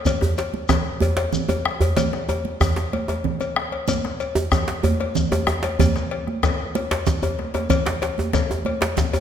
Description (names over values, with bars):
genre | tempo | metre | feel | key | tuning
west african traditional, West African drum ensemble | 126 BPM (dotted quarters) | 12/8 | straight | none | none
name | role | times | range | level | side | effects
bombo | percussion | 0.1-9.1 s | none | -26 LUFS | equal | none
congas | percussion | 0.1-9.2 s | none | -26 LUFS | right 7 dB | none
cowbell | percussion | 0.1-9.2 s | none | -27 LUFS | left 6 dB | none
djembe | percussion | 0.1-9.2 s | none | -28 LUFS | left 6 dB | none
shekere | percussion | 0.1-9.2 s | none | -34 LUFS | left 2 dB | none
djembe | percussion | 0.2-9.2 s | none | -23 LUFS | right 2 dB | none
room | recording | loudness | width
wet recital hall reverb, RT60 1.8 s | none | -20 LUFS | side -8 dB against mid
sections
0.1-9.2 A section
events
drum fill 7.1-7.7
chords
none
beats
| 0.06 0.54 1.01 1.49 | 1.97 2.45 2.93 3.40 | 3.88 4.36 4.84 5.32 | 5.79 6.27 6.75 7.22 | 7.70 8.18 8.66 9.13